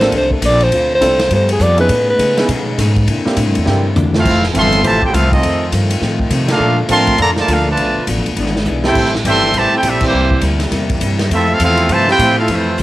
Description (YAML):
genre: jazz, big band swing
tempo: 204 BPM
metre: 4/4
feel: swing 62% on 8ths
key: F major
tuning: A4 = 440 Hz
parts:
  - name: clear alto saxophone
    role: melody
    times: 0.0-2.5 s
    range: Ab4 to D5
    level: -14 LUFS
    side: equal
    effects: cassette tape
  - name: vintage hollow-body jazz guitar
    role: accompaniment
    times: 0.0-12.8 s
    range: F2 to C5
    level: -23 LUFS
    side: left 3 dB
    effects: none
  - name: warm baby grand piano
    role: accompaniment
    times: 0.0-3.8 s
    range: Bb3 to A4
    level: -20 LUFS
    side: right 2 dB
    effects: none
  - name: warm trombone section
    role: sustained chords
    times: 0.0-12.8 s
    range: C3 to G4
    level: -24 LUFS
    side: left 1 dB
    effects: stereo widening
  - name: upright bass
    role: bass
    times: 0.0-12.8 s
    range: D1 to C#3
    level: -17 LUFS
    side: equal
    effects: none
  - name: swinging big-band drum kit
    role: drums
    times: 0.0-12.8 s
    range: crash cymbal, hi-hat, kick drum, ride cymbal, snare drum, toms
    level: -20 LUFS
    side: equal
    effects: none
  - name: clear trombone section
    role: second line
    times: 4.1-12.8 s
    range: C3 to G4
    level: -20 LUFS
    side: right 2 dB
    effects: none
  - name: clear trumpet section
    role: melody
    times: 4.2-12.8 s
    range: A3 to C6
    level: -14 LUFS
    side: equal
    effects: cassette tape
room: light reverb, small room ambience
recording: home recording on cassette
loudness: -11 LUFS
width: side -16 dB against mid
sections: 0.0-4.2 A section; 4.2-12.8 B section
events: alto saxophone solo 0.0-4.2; drum fill 3.7-4.2, 8.7; band accent 6.5, 10.0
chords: 0.0 Bbmaj9; 0.7 Dm7; 1.3 G9; 1.9 Amaj9#11; 3.1 C9; 4.2 Fmaj7; 5.4 F7; 6.6 Bbmaj7; 7.8 Bm7b5; 8.4 E7; 9.0 Am7; 10.1 C7; 11.3 Fmaj7